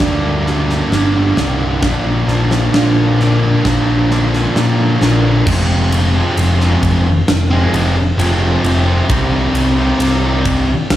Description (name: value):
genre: post-rock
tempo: 66 BPM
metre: 4/4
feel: straight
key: F dorian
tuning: A4 = 439 Hz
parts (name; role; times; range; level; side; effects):
- thick fuzz guitar; riff; 0.0-10.7 s; F2 to Eb4; -15 LUFS; equal; distortion, slapback echo
- growling picked electric bass; bass; 0.0-11.0 s; F1 to Bb2; -15 LUFS; left 1 dB; overdrive
- huge arena drum kit; drums; 0.0-11.0 s; crash cymbal, kick drum, ride cymbal, snare drum; -18 LUFS; right 1 dB; none
room: moderate lush hall reverb, RT60 2.6 s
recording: big arena sound, studio reverb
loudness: -11 LUFS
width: side -13 dB against mid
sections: 0.0-5.5 A section; 5.5-11.0 B section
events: build-up 0.0-5.5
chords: 0.0 Gm; 1.8 Bb; 5.5 Fm; 9.1 Cm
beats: 0.01 0.92 | 1.83 2.74 3.65 4.56 | 5.47 6.37 7.28 8.19 | 9.10 10.00 10.91